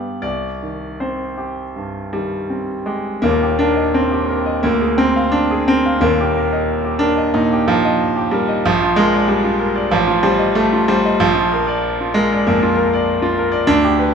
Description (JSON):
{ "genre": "classical, romantic character piece for solo piano", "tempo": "75-100 BPM", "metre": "4/4", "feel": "rubato", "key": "C minor, Eb major from 3.2 s", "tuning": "A4 = 440 Hz", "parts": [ { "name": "clear concert grand piano", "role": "solo", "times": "0.0-14.1 s", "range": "Eb1 to F5", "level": "-14 LUFS", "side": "equal", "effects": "none" } ], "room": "moderate recital hall reverb, RT60 1.5 s", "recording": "none", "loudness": "-14 LUFS", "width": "side -6 dB against mid", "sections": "0.0-3.2 A section; 3.2-14.1 B section", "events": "none", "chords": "0.2 Cm; 3.2 Eb; 4.7 Bb7/D; 6.0 Eb; 8.6 Bb; 9.9 F7/A; 11.2 Bb", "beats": "| 0.24 1.02 1.77 2.51 | 3.25 3.95 4.65 5.35 | 6.03 6.70 7.35 7.99 | 8.64 9.28 9.90 10.56 | 11.19 11.83 12.46 13.06 | 13.68" }